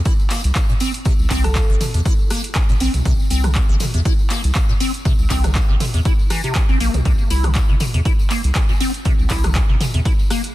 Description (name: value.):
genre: acid house.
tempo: 120 BPM.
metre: 4/4.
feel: swing 55% on 16ths.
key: C mixolydian.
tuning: A4 = 440 Hz.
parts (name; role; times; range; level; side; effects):
liquid acid bass; riff; 0.1-10.4 s; Bb2 to E4; -24 LUFS; equal; phaser, tube saturation, wide subtle chorus, tape echo.
electronic kick drum; drums; 0.1-10.2 s; none; -18 LUFS; equal; none.
punchy analog drum machine; drums; 0.1-10.5 s; handclaps, hi-hat, rim click, toms; -26 LUFS; right 1 dB; none.
tambourine; percussion; 0.1-10.5 s; none; -33 LUFS; left 5 dB; none.
saturated sub bass; bass; 0.4-10.0 s; G1 to E2; -18 LUFS; equal; sidechain pumping.
thumb-piano-like synth pluck; melody; 1.4-1.6 s; A4; -30 LUFS; right 1 dB; chorus, cassette tape, tape echo.
room: digital ambience.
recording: dense, heavily limited modern master.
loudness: -15 LUFS.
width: side -16 dB against mid.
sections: 0.0-10.5 A section.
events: none.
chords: 0.0 C5.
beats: 0.06 0.56 | 1.05 1.55 2.06 2.56 | 3.06 3.56 4.05 4.55 | 5.05 5.55 6.05 6.55 | 7.05 7.55 8.05 8.55 | 9.05 9.55 10.05.